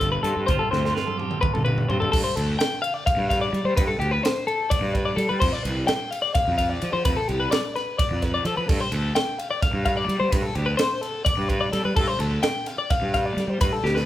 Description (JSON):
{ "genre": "math rock and midwest emo", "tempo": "256 BPM (eighths)", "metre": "7/8", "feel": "straight", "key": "unclear", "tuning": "A4 = 439 Hz", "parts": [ { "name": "twangy electric guitar", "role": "accompaniment", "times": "0.0-3.8 s", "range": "G2 to F4", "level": "-32 LUFS", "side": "right 7 dB", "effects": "none" }, { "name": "twelve-string electric guitar", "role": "arpeggios", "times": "0.0-14.1 s", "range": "G4 to G5", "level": "-24 LUFS", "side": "left 3 dB", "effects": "none" }, { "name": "fuzz fingered electric bass", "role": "bass", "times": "0.0-14.0 s", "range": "G1 to G3", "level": "-26 LUFS", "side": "right 1 dB", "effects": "overdrive" }, { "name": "crisp fusion drum kit", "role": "drums", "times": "0.0-14.1 s", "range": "crash cymbal, hi-hat, kick drum, ride cymbal, snare drum, toms", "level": "-26 LUFS", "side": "right 1 dB", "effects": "none" } ], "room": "light reverb", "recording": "band playing live in one room", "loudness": "-21 LUFS", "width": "side -13 dB against mid", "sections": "0.0-2.1 A section; 2.1-14.1 B section", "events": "drum fill 0.7-2.1, 13.8", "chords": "0.0 G9sus4; 5.4 F5; 8.7 G9sus4" }